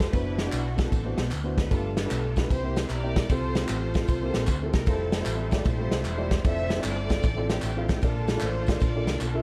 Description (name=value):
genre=uptempo gospel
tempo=152 BPM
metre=4/4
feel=swing 65% on 8ths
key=F major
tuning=A4 = 436 Hz
part: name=clear studio string section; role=melody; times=0.0-9.4 s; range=C4 to E5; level=-36 LUFS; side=equal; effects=none
part: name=dark upright piano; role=accompaniment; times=0.0-9.4 s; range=G2 to F5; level=-35 LUFS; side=equal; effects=none
part: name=hollow-body short-scale fingered electric bass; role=bass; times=0.0-9.4 s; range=E1 to D2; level=-32 LUFS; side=equal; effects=none
part: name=natural country drum kit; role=drums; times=0.0-9.3 s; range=kick drum, ride cymbal, snare drum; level=-30 LUFS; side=equal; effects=none
part: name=tambourine and handclaps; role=percussion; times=0.0-9.3 s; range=none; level=-43 LUFS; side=equal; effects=none
part: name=bright tonewheel organ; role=sustained chords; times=4.9-9.4 s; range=D3 to F4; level=-39 LUFS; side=equal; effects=slow rotary speaker, overdrive, chorus vibrato
room=light reverb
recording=dark, warm production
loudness=-26 LUFS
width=mono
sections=0.0-9.4 A section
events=none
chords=0.1 D13/F#; 1.7 G9; 2.5 C7; 3.3 F/C; 4.1 C7; 4.9 Fmaj9; 6.5 Dm9/F; 8.0 Bbmaj7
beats=| 0.14 0.53 0.93 1.32 | 1.72 2.11 2.51 2.90 | 3.29 3.69 4.08 4.48 | 4.87 5.27 5.66 6.05 | 6.45 6.84 7.24 7.63 | 8.03 8.42 8.81 9.21